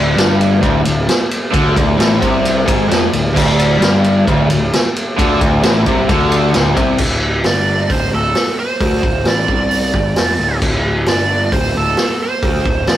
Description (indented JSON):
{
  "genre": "blues rock power trio and southern rock",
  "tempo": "132 BPM",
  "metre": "4/4",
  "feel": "straight",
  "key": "D minor",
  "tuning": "A4 = 438 Hz",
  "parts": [
    { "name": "cranked stack guitar", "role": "riff", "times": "0.0-7.0 s", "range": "D2 to D3", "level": "-14 LUFS", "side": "equal", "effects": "overdrive" },
    { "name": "fuzz picked electric bass", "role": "bass", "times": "0.0-13.0 s", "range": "D1 to D2", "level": "-18 LUFS", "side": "left 1 dB", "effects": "overdrive" },
    { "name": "vintage drum kit", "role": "drums", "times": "0.2-13.0 s", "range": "crash cymbal, hi-hat, kick drum, ride cymbal, snare drum", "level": "-16 LUFS", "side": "equal", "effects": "none" },
    { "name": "biting lead guitar", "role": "second line", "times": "7.5-13.0 s", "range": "A4 to D5", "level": "-18 LUFS", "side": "right 4 dB", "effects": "overdrive" }
  ],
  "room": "moderate stone room reverb, RT60 1.2 s",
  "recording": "rough rehearsal-room recording, warm saturation",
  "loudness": "-12 LUFS",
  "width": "side -12 dB against mid",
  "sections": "0.0-7.0 A section; 7.0-13.0 B section",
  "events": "lead electric guitar solo 7.0-13.0",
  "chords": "0.0 D5; 7.0 N.C."
}